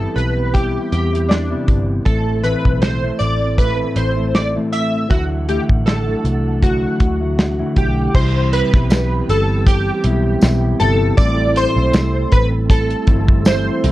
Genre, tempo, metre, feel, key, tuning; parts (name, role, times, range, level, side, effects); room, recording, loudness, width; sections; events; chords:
indie pop, bedroom pop; 79 BPM; 4/4; swing 55% on 16ths; C lydian; A4 = 440 Hz
chorused retro synth keys; melody; 0.0-13.9 s; D4 to E5; -21 LUFS; equal; ensemble chorus
mellow electric guitar; accompaniment; 0.0-13.9 s; A2 to E4; -23 LUFS; left 2 dB; wide subtle chorus, warbly pitch drift
percussive tonewheel organ; accompaniment; 0.0-13.9 s; E3 to F#5; -24 LUFS; right 3 dB; fast rotary speaker, cassette tape
vintage muted picked electric bass; bass; 0.0-13.9 s; G1 to E2; -19 LUFS; equal
damped 70s drum kit; drums; 0.2-13.9 s; crash cymbal, hi-hat, kick drum, snare drum; -15 LUFS; equal; vintage 12-bit sampler grit
tambourine; percussion; 8.9-13.7 s; -34 LUFS; left 2 dB
light reverb; cassette tape; -14 LUFS; side -16 dB against mid
0.0-8.1 A section; 8.1-13.9 B section
0.0 Cmaj7; 2.1 Am; 5.1 Dadd9; 8.1 Cmaj7; 11.2 Am7